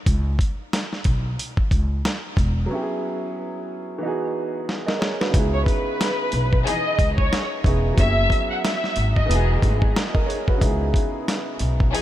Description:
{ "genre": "hip hop, boom-bap hip-hop", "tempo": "91 BPM", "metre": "4/4", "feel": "swing 59% on 16ths", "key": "C# minor", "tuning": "A4 = 440 Hz", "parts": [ { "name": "upright bass", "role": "bass", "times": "0.1-11.9 s", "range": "E1 to C#2", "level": "-22 LUFS", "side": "equal", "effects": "none" }, { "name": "dusty soul sampler-style drum kit", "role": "drums", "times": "0.1-12.0 s", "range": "hi-hat, kick drum, snare drum", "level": "-22 LUFS", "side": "equal", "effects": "none" }, { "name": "clear upright piano", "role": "accompaniment", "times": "2.7-12.0 s", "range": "C#3 to D#5", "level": "-27 LUFS", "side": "right 2 dB", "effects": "cassette tape, high-pass filter, low-pass filter" }, { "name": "warm studio violin section", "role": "melody", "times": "5.5-9.5 s", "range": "B4 to F#5", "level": "-25 LUFS", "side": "left 1 dB", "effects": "high-pass filter, low-pass filter, tape echo" }, { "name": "warm symphonic string section", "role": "stabs", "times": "6.7-12.0 s", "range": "D#3 to G#4", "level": "-31 LUFS", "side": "left 3 dB", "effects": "high-pass filter, low-pass filter, tape echo" } ], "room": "light reverb, small room ambience", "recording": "none", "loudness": "-19 LUFS", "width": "side -13 dB against mid", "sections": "0.0-5.3 A section; 5.3-12.0 B section", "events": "break 0.0-2.7, 2.7-5.3; drum fill 4.7-5.3", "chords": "0.1 C#m7; 2.7 F#9sus4; 4.0 Emaj9; 5.3 C#m9; 8.0 F#9sus4; 9.3 Emaj9; 10.6 C#m9" }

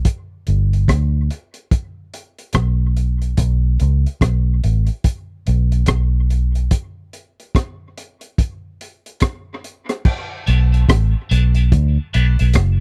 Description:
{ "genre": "dub reggae", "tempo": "72 BPM", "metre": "4/4", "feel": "swing 61% on 16ths", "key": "B minor", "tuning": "A4 = 437 Hz", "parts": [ { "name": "crunchy breakbeat drum kit", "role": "drums", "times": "0.0-12.8 s", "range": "crash cymbal, hi-hat, kick drum, rim click", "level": "-20 LUFS", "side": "equal", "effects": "none" }, { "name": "vintage muted fingered electric bass", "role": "bass", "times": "0.5-12.8 s", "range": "F#1 to D2", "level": "-17 LUFS", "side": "equal", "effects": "none" }, { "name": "clean electric guitar", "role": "accompaniment", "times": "10.5-12.5 s", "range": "F#3 to D4", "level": "-30 LUFS", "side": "equal", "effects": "high-pass filter, dub echo" }, { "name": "warm grand piano", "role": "stabs", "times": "10.5-12.4 s", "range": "D4 to D5", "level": "-38 LUFS", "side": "equal", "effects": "high-pass filter, dub echo" } ], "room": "little or no reverb", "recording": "dry, close 1970s-style studio recording", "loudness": "-18 LUFS", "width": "mono", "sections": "0.0-10.1 A section; 10.1-12.8 B section", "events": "break 0.0-10.1", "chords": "0.1 G; 3.4 N.C.; 10.1 Bm" }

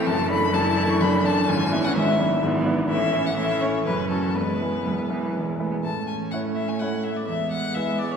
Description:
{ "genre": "quick classical-period movement for piano quartet", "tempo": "126 BPM", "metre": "3/4", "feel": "straight", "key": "A major", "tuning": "A4 = 440 Hz", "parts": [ { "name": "rich violin", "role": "melody", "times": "0.0-8.2 s", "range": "A4 to C#6", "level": "-26 LUFS", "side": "left 4 dB", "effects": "none" }, { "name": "rich cello", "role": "second line", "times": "0.0-8.2 s", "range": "E3 to B3", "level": "-29 LUFS", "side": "right 4 dB", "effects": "none" }, { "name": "bright baby grand piano", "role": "accompaniment", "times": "0.0-8.2 s", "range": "E1 to C#5", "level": "-24 LUFS", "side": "equal", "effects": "none" }, { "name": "rich viola", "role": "accompaniment", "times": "0.0-8.2 s", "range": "A3 to E4", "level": "-30 LUFS", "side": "equal", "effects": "none" } ], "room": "wet concert hall reverb, RT60 2.0 s", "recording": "heard from further back in the room", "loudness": "-21 LUFS", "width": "side -6 dB against mid", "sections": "0.0-5.8 A section; 5.8-8.2 B section", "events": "none", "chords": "0.1 D/F#; 1.5 E7/G#; 2.9 A; 3.9 F#m; 4.4 E; 5.8 A; 7.3 E" }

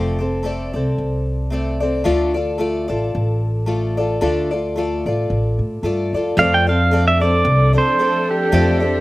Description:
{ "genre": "acoustic folk duo or small band", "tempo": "111 BPM", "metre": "4/4", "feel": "swing 55% on 8ths", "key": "unclear", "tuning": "A4 = 440 Hz", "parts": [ { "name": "fingerpicked twelve-string acoustic guitar", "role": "accompaniment", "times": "0.0-9.0 s", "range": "D3 to D5", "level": "-20 LUFS", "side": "left 1 dB", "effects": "slapback echo" }, { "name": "upright bass", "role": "bass", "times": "0.0-9.0 s", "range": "F1 to A2", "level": "-20 LUFS", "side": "equal", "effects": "none" }, { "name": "pedal steel guitar", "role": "second line", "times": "6.4-9.0 s", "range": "G4 to G5", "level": "-17 LUFS", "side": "right 2 dB", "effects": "slapback echo" }, { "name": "warm studio string section", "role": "sustained chords", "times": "6.4-9.0 s", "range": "F3 to A4", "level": "-25 LUFS", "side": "equal", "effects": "none" } ], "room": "little or no reverb", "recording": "recorded outdoors, with no room sound", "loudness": "-16 LUFS", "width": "side -18 dB against mid", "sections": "0.0-6.4 A section; 6.4-9.0 B section", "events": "pedal steel guitar solo 6.4-9.0", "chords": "0.0 F6; 2.1 Dm; 6.4 F6" }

